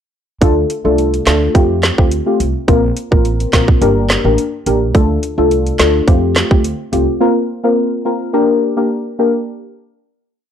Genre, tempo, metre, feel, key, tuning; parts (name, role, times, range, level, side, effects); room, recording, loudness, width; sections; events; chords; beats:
dancehall; 106 BPM; 4/4; straight; G minor; A4 = 440 Hz
deep mellow chord stab; accompaniment; 0.4-9.3 s; A3 to Bb4; -14 LUFS; left 1 dB; chorus
upright bass; bass; 0.4-7.0 s; G1 to F2; -18 LUFS; right 1 dB
island pop drum kit; drums; 0.4-7.1 s; handclaps, hi-hat, kick drum, snare drum; -13 LUFS; right 1 dB; overdrive
digital ambience; dry, gritty hardware recording, cassette tape; -12 LUFS; side -8 dB against mid
0.4-9.5 verse
0.4 Dm; 1.5 Fadd9; 2.7 Bbsus2; 3.8 Gm; 4.9 Dm; 6.1 Fadd9; 7.2 Bbsus2; 8.3 Gm
| 0.42 0.98 1.55 2.12 | 2.68 3.25 3.81 4.38 | 4.95 5.51 6.08 6.64 | 7.21 7.78 8.34 8.91